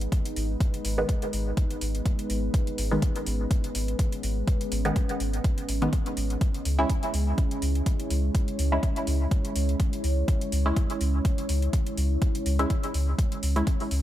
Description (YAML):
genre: dub techno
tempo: 124 BPM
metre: 4/4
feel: swing 55% on 16ths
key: unclear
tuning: A4 = 440 Hz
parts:
  - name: deep dark ambient pad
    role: sustained chords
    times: 0.0-14.0 s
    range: G#3 to C#5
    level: -32 LUFS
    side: equal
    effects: chorus, built-in reverb, vintage 12-bit sampler grit, sidechain pumping
  - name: soft dub sub bass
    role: bass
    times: 0.0-14.0 s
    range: G#1 to C#2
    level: -26 LUFS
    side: equal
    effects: sidechain pumping
  - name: electronic hi-hat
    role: drums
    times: 0.0-14.0 s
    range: none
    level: -38 LUFS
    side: left 1 dB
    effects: overdrive
  - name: electronic kick drum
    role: drums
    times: 0.1-13.8 s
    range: none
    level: -25 LUFS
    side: equal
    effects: overdrive
  - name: filtered dub chord stab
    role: stabs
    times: 1.0-13.6 s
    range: D#3 to E4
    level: -30 LUFS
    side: equal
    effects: chorus, phaser, sidechain pumping, dub echo
room: little or no reverb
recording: none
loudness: -24 LUFS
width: side -13 dB against mid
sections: 0.0-14.0 A section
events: none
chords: 0.0 G#m; 6.4 C#m